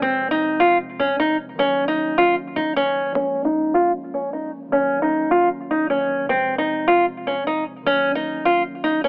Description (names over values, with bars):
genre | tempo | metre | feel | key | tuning
hip hop, trap | 153 BPM | 4/4 | half-time | Bb minor | A4 = 440 Hz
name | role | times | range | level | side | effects
nylon-string guitar | melody | 0.0-9.1 s | C4 to F4 | -20 LUFS | equal | low-pass filter, cassette tape
mellow tine electric piano | accompaniment | 0.0-9.1 s | C3 to Db4 | -33 LUFS | equal | low-pass filter, cassette tape
warm 808-style bass | bass | 0.0-3.1 s | F1 to Ab1 | -46 LUFS | equal | none
room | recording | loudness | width
moderate studio reverb, RT60 0.6 s | home recording on cassette, telephone sound | -20 LUFS | mono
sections
0.0-3.2 A section; 3.2-9.1 B section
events
filter sweep 3.2-9.1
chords
0.0 Fm; 1.6 Gb6; 3.2 Bbm7; 4.7 Ebm7; 6.3 Fm; 7.9 Gb6